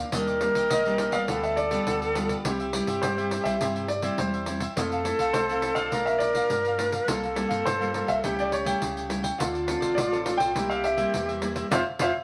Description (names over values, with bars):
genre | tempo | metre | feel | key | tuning
samba and choro | 104 BPM | 4/4 | straight | unclear | A4 = 444 Hz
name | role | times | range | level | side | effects
cavaquinho | accompaniment | 0.0-12.1 s | D4 to Bb5 | -37 LUFS | equal | none
nylon-string guitar | accompaniment | 0.0-12.1 s | G2 to A4 | -35 LUFS | equal | none
sub bass with octave | bass | 0.0-12.1 s | A1 to G2 | -42 LUFS | equal | none
breathy mellow silver concert flute | second line | 0.1-12.1 s | F4 to Bb4 | -30 LUFS | equal | none
pandeiro | percussion | 0.1-12.1 s | none | -35 LUFS | equal | none
warm baby grand piano | melody | 0.7-12.1 s | C5 to G5 | -31 LUFS | equal | none
room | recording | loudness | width
moderate studio reverb, RT60 0.7 s | none | -26 LUFS | mono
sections
0.0-12.2 A section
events
band accent 11.7-12.2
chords
0.1 Ebmaj7; 1.3 G7/D; 2.4 C; 4.8 Fmaj7; 5.9 Bbmaj7; 7.1 C7sus4; 8.2 A7/C#; 9.4 Dm7; 10.6 C7; 11.7 F5